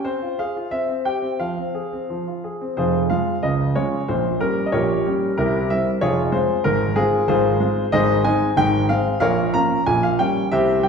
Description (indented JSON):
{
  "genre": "classical-period piano sonatina",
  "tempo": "93 BPM",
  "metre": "2/4",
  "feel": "rubato",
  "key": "F minor",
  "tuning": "A4 = 440 Hz",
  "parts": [
    { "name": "clear concert grand piano", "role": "solo", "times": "0.0-10.9 s", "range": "F1 to Bb5", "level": "-18 LUFS", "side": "equal", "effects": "none" }
  ],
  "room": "wet recital hall reverb, RT60 1.6 s",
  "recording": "recorded in a church or concert hall",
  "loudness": "-18 LUFS",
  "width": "side -6 dB against mid",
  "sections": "0.0-2.8 A section; 2.8-10.9 A section",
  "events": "none",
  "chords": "0.1 Fm/C; 0.7 C; 1.4 Fm; 3.4 Db; 4.1 Gdim/Bb; 5.4 C7; 6.0 Fm; 6.7 Fm/Ab; 7.9 Ab; 8.6 Fm/Ab; 9.2 Bbm; 9.9 Gdim/Bb"
}